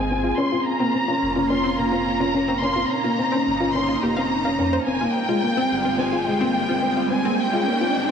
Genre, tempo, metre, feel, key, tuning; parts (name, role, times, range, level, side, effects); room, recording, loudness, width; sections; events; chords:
piano and strings electronica; 107 BPM; 4/4; straight; A4 = 440 Hz
warm symphonic violin section; melody; 0.0-8.1 s; G5 to C6; -24 LUFS; equal; low-pass filter
lush unison pad; sustained chords; 0.0-8.1 s; G3 to Ab4; -27 LUFS; right 1 dB; chorus, phaser
analog pluck; arpeggios; 0.0-8.1 s; C4 to F5; -28 LUFS; left 2 dB; chorus, phaser, tape echo
felt-muted upright piano; riff; 0.0-8.1 s; Ab3 to Db4; -23 LUFS; left 1 dB
warm sub bass; bass; 0.0-8.1 s; F1 to F2; -34 LUFS; equal
riser; sound effects; 6.1-8.1 s; -30 LUFS; right 4 dB
wet huge ambient reverb, RT60 5.3 s; dark, warm production, high-pass filter; -19 LUFS; side -7 dB against mid
0.0-8.1 A section
build-up 0.0-8.1; riser 6.1-8.1
0.4 Bbm/F; 4.9 Fmadd9